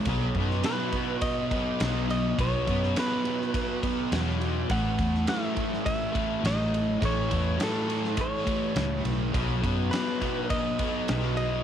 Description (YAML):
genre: rock, shoegaze and dream pop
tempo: 103 BPM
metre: 4/4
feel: straight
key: unclear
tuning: A4 = 440 Hz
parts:
  - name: fuzz guitar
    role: riff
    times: 0.0-11.6 s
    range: A2 to B3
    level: -28 LUFS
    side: equal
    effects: distortion, wide subtle chorus, cassette tape
  - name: vintage muted fingered electric bass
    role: bass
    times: 0.1-11.6 s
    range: A1 to F#2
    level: -29 LUFS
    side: equal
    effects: none
  - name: huge arena drum kit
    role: drums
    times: 0.1-11.5 s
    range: kick drum, ride cymbal, snare drum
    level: -32 LUFS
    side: equal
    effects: none
  - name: direct-recorded clean electric guitar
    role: melody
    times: 0.7-11.6 s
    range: A4 to F#5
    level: -32 LUFS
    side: equal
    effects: analog delay
room: light reverb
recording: home recording on cassette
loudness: -25 LUFS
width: side -9 dB against mid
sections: 0.1-11.6 A section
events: none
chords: 0.1 B; 4.7 A; 9.3 B